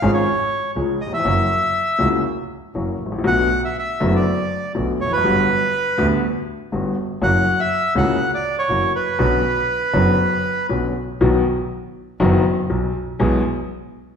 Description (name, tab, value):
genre	tango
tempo	121 BPM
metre	4/4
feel	rubato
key	B minor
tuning	A4 = 440 Hz
part	bandoneon	melody	0.0-10.7 s	B4 to F#5	-20 LUFS	right 1 dB	none
part	bright upright piano	accompaniment	0.0-13.4 s	F#1 to G#4	-20 LUFS	left 2 dB	none
part	clear double bass	bass	0.0-13.4 s	E#1 to D2	-24 LUFS	right 2 dB	none
room	wet recital hall reverb, RT60 1.3 s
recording	recorded in a church or concert hall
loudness	-17 LUFS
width	side -7 dB against mid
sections	0.0-11.2 A section; 11.2-14.2 B section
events	none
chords	0.0 C#; 1.2 F#7; 3.3 Bm7; 5.2 Gmaj7; 7.2 F#7; 9.2 Bmadd9; 11.2 B; 13.2 E/B